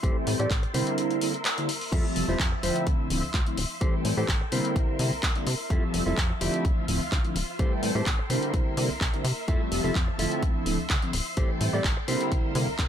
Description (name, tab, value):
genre	filtered disco house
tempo	127 BPM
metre	4/4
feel	swing 53% on 16ths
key	D minor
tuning	A4 = 435 Hz
part	mellow synth brass	accompaniment	0.0-12.7 s	D3 to E5	-30 LUFS	equal	chorus, phaser, sidechain pumping, low-pass filter
part	string machine, full ensemble	sustained chords	0.0-12.9 s	F3 to C6	-35 LUFS	equal	ensemble chorus, sidechain pumping, low-pass filter
part	mellow electric guitar	riff	0.0-12.8 s	E4 to D5	-33 LUFS	right 1 dB	vintage 12-bit sampler grit, sidechain pumping, low-pass filter
part	plucky analog bass	bass	0.0-12.9 s	D1 to C3	-30 LUFS	equal	tube saturation, sidechain pumping, low-pass filter
part	electronic kick drum	drums	0.0-12.9 s	none	-26 LUFS	equal	none
part	punchy analog drum machine	drums	0.0-12.9 s	crash cymbal, handclaps, hi-hat	-31 LUFS	left 1 dB	sidechain pumping on hats, sidechain pumping on cymbals
room	little or no reverb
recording	none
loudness	-24 LUFS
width	side -9 dB against mid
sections	0.0-12.9 A section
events	none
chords	0.0 Am7; 0.7 C7; 1.9 Fmaj7; 2.9 Dm9; 3.8 Am7; 4.5 C7; 5.7 Fmaj7; 6.6 Dm9; 7.6 Am7; 8.3 C7; 9.5 Fmaj7; 10.4 Dm9; 11.4 Am7; 12.1 C7